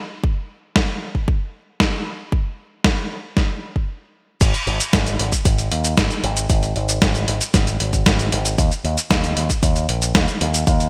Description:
italo disco; 115 BPM; 4/4; straight; A4 = 440 Hz
electronic kick drum; drums; 0.2-10.8 s; -22 LUFS; equal
dusty soul sampler-style drum kit; drums; 0.8-10.9 s; cabasa, crash cymbal, hi-hat, snare drum; -22 LUFS; equal; overdrive, gated reverb
picked electric bass with an envelope filter; bass; 4.4-10.9 s; G#1 to D#2; -24 LUFS; equal
light reverb; bright 1980s-style digital production; -20 LUFS; mono
0.0-4.4 A section; 4.4-10.9 B section
stop 3.9-4.4
| 0.24 0.76 1.28 1.80 | 2.32 2.85 3.37 3.89 | 4.41 4.93 5.45 5.97 | 6.50 7.02 7.54 8.06 | 8.58 9.11 9.63 10.15 | 10.67

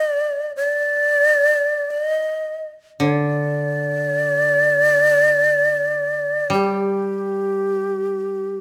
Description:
japanese traditional, Japanese chamber music; free time; A4 = 440 Hz
breathy mellow shakuhachi; melody; 0.0-8.6 s; G4 to Eb5; -20 LUFS; equal
koto; accompaniment; 3.0-8.6 s; D3 to G3; -27 LUFS; equal
light reverb; close, detailed microphones; -19 LUFS; mono
0.0-8.6 A section
free time

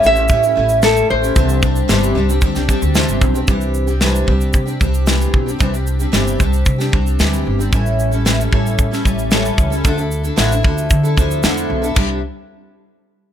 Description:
acoustic pop; 113 BPM; 4/4; straight; C major; A4 = 441 Hz
picked steel-string acoustic guitar; accompaniment; 0.0-12.2 s; A2 to A4; -19 LUFS; equal; double-tracked left and right
upright bass; bass; 0.0-12.2 s; G1 to D3; -18 LUFS; equal
modern studio drum kit; drums; 0.0-12.1 s; crash cymbal, kick drum, shaker, snare drum; -17 LUFS; equal
nylon-string guitar; melody; 0.1-2.9 s; A4 to E5; -15 LUFS; right 1 dB
small room reverb; -13 LUFS; side -10 dB against mid
0.0-3.5 A section; 3.5-12.0 B section; 12.0-13.3 C section
0.0 A7; 1.4 Cadd9; 7.7 A7; 9.8 Dmadd9; 12.0 Cadd9
0.30 0.83 | 1.36 1.89 2.42 2.95 | 3.48 4.01 4.54 5.07 | 5.60 6.13 6.66 7.19 | 7.72 8.26 8.79 9.32 | 9.85 10.38 10.91 11.44 | 11.97

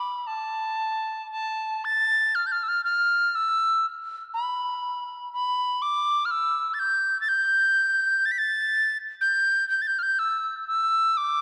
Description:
celtic folk; 61 BPM; 4/4; rubato; A4 = 440 Hz
bright wooden whistle; solo; 0.0-11.4 s; A5 to B6; -25 LUFS; equal
moderate church reverb, RT60 3.0 s; dark, warm production; -25 LUFS; mono
0.0-11.4 A section
0.26 1.31 2.35 | 3.36 4.36 5.34 6.31 | 7.29 8.27 9.24 10.21 | 11.18

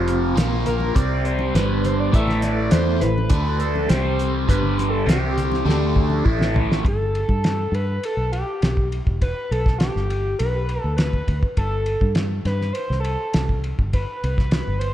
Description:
psychedelic rock; 102 BPM; 4/4; straight; G mixolydian; A4 = 440 Hz
mellow tonewheel organ; sustained chords; 0.0-6.8 s; C3 to F5; -29 LUFS; right 3 dB; slow rotary speaker
overdriven electric guitar; riff; 0.0-6.8 s; F2 to E4; -23 LUFS; equal; phaser
fingered electric bass; bass; 0.0-14.9 s; E1 to G2; -23 LUFS; equal
cloth-damped thuddy drum kit; drums; 0.1-14.9 s; hi-hat, kick drum, ride cymbal, snare drum, toms; -22 LUFS; equal
overdriven synth lead; melody; 0.7-14.9 s; G4 to E5; -26 LUFS; equal; distortion, analog delay
congas; percussion; 0.7-6.7 s; -33 LUFS; left 2 dB
moderate plate reverb, RT60 1.7 s, small room ambience; dreamy mix soaked in reverb, cassette tape; -18 LUFS; side -12 dB against mid
0.0-6.9 A section; 6.9-14.9 B section
drum fill 5.7-6.9
0.4 Bb5; 1.0 C5; 1.6 G; 2.1 A5; 3.3 D5; 3.9 C5; 4.5 G5; 5.1 C5; 5.7 D5; 6.3 A5; 6.9 G; 11.6 Am/G
0.37 0.96 1.55 | 2.14 2.73 3.32 3.91 | 4.50 5.08 5.67 6.26 | 6.85 7.44 8.03 8.62 | 9.21 9.80 10.39 10.98 | 11.57 12.16 12.76 13.35 | 13.94 14.53

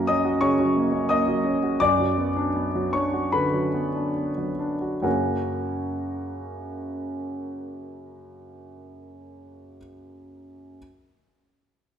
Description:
classical, virtuoso piano study; 67-90 BPM; 4/4; rubato; F# major; A4 = 440 Hz
warm concert grand piano; solo; 0.0-10.8 s; F#2 to D#6; -23 LUFS; equal
wet recital hall reverb, RT60 1.6 s; -22 LUFS; side -8 dB against mid
0.0-5.0 A section; 5.0-8.6 B section
slowing down 0.0-5.0
0.0 F#; 1.8 Bm/F#; 5.0 F#
0.42 1.10 | 1.82 2.56 3.34 4.16 | 5.04 5.93 6.81 7.70

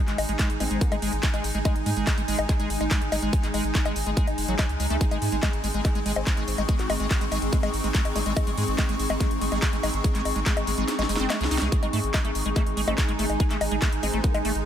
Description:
psychedelic trance; 143 BPM; 4/4; straight; G# major; A4 = 439 Hz
evolving wavetable pad; sustained chords; 0.0-14.7 s; G#3 to D#4; -32 LUFS; equal; ensemble chorus, built-in reverb, sidechain pumping
airy breathy pad; texture; 0.0-14.7 s; D#4 to C#6; -32 LUFS; equal; chorus, sidechain pumping
liquid acid bass; riff; 0.1-14.5 s; F#3 to D#4; -32 LUFS; moving between left 4 dB and right 5 dB; chorus, auto-pan, sidechain pumping, digital delay
round analog bass; bass; 0.1-14.6 s; F#1 to G#2; -29 LUFS; equal
drum and bass drum kit; drums; 0.1-14.6 s; bongos, handclaps, hi-hat, snare drum; -30 LUFS; left 2 dB; overdrive
electronic kick drum; drums; 0.4-14.3 s; -23 LUFS; equal
vowel-sweep wobble bass; second line; 0.6-0.9, 6.2-8.3, 12.9-14.3 s; B#3 to F#4; -40 LUFS; left 5 dB
swell; sound effects; 11.2-11.7 s; -39 LUFS; left 1 dB
light reverb; -22 LUFS; side -10 dB against mid
0.0-14.7 A section
kick drops out 10.9-11.7; drum fill 10.9-11.7
0.0 G#5
0.39 0.81 1.23 | 1.65 2.07 2.49 2.91 | 3.33 3.75 4.17 4.59 | 5.01 5.43 5.85 6.27 | 6.69 7.11 7.53 7.95 | 8.37 8.79 9.20 9.62 | 10.04 10.46 10.88 11.30 | 11.72 12.14 12.56 12.98 | 13.40 13.82 14.24

